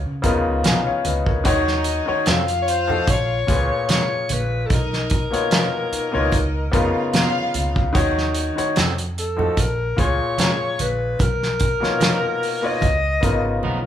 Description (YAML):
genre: lush 1970s-style soul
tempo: 74 BPM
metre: 4/4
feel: swing 54% on 16ths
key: unclear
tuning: A4 = 441 Hz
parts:
  - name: vintage muted fingered electric bass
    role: bass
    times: 0.0-13.8 s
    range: Ab1 to C#3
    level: -25 LUFS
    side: right 1 dB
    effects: none
  - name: clear grand piano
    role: accompaniment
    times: 0.2-13.9 s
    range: Bb2 to Ab5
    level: -23 LUFS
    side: left 2 dB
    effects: none
  - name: warm soul drum kit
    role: drums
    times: 0.2-13.4 s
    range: hi-hat, kick drum, snare drum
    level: -21 LUFS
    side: right 1 dB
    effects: none
  - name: congas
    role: percussion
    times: 0.2-13.8 s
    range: none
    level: -32 LUFS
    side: right 4 dB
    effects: none
  - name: electric guitar at the edge of break-up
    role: riff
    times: 0.6-13.8 s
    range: E#3 to A#4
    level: -28 LUFS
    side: right 3 dB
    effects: none
  - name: warm studio violin section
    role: second line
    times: 1.5-7.7 s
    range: Db4 to F5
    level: -26 LUFS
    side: left 2 dB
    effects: none
  - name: warm alto saxophone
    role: melody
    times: 2.6-13.6 s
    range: A4 to D#5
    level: -24 LUFS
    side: left 2 dB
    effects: none
room: moderate large studio reverb, RT60 0.8 s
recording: band playing live in one room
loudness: -18 LUFS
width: side -10 dB against mid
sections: 0.0-13.9 A section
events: none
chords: 0.0 Bmaj9#11; 1.5 Ebm7; 2.3 F7b9; 3.1 Bbm7; 4.7 Bmaj9#11; 6.3 Db13; 7.9 Ebm7; 8.8 F7b9; 9.6 Bbm7; 11.2 Bmaj9#11; 12.8 Db13